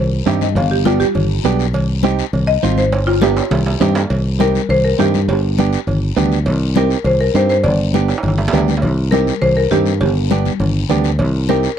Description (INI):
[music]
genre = latin, cumbia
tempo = 203 BPM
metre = 4/4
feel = straight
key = C harmonic minor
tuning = A4 = 440 Hz
[part]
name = buzzing marimba with medium hard mallets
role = melody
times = 0.0-11.8 s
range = F4 to F5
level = -18 LUFS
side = left 1 dB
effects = none
[part]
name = fingered electric bass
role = bass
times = 0.0-11.7 s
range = G1 to G2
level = -16 LUFS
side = equal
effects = none
[part]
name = congas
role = percussion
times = 0.1-11.6 s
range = none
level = -21 LUFS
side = left 6 dB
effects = none
[part]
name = direct-recorded clean electric guitar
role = accompaniment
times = 0.3-11.7 s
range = B3 to G4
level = -18 LUFS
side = right 13 dB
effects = none
[part]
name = guiro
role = percussion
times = 0.3-11.8 s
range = none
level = -30 LUFS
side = left 23 dB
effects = none
[part]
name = timbales and cowbell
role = percussion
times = 0.3-11.3 s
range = none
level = -24 LUFS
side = right 6 dB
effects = none
[sound]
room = little or no reverb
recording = dry, close 1970s-style studio recording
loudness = -13 LUFS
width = side -9 dB against mid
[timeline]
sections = 0.0-4.1 A section; 4.1-11.8 B section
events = marimba solo 0.0-4.1; drum fill 2.9-4.1, 8.1-8.8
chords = 0.0 Cm; 0.6 G; 1.7 Cm; 2.9 G; 3.5 Cm; 5.3 G; 6.5 Cm; 7.6 G; 8.8 Cm; 10.0 G; 11.2 Cm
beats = 0.27 | 0.56 0.86 1.15 1.45 | 1.74 2.04 2.33 2.63 | 2.92 3.22 3.51 3.81 | 4.10 4.40 4.69 4.99 | 5.28 5.58 5.88 6.17 | 6.47 6.76 7.06 7.35 | 7.65 7.94 8.24 8.53 | 8.83 9.12 9.42 9.71 | 10.01 10.30 10.60 10.90 | 11.19 11.49 11.78